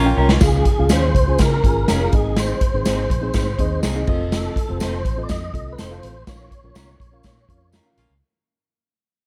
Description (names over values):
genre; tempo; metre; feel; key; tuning
uptempo 1960s-style soul; 123 BPM; 4/4; straight; unclear; A4 = 440 Hz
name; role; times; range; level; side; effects
edgy saxophone section; second line; 0.0-0.4, 7.7-8.1 s; Bb3 to F4; -28 LUFS; equal; none
mellow reed electric piano; accompaniment; 0.0-8.1 s; Ab2 to Ab5; -28 LUFS; equal; fast tremolo
electric guitar through a small old amp; stabs; 0.0-7.9 s; C4 to Bb4; -28 LUFS; equal; none
vintage muted fingered electric bass; bass; 0.0-8.2 s; F1 to Db3; -24 LUFS; equal; none
swinging big-band drum kit; drums; 0.3-8.1 s; crash cymbal, hi-hat, kick drum, snare drum; -23 LUFS; equal; none
mellow tonewheel organ; melody; 0.4-7.7 s; Ab4 to Eb5; -27 LUFS; equal; chorus vibrato, fast rotary speaker
tambourine; percussion; 0.4-7.8 s; none; -40 LUFS; equal; none
room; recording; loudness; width
little or no reverb; none; -19 LUFS; mono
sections
0.4-8.2 A section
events
drum fill 0.0-0.4; fade-out 0.4-8.2; band accent 6.3-8.2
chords
0.4 Db; 2.1 Ab; 4.1 F7; 6.3 Bbm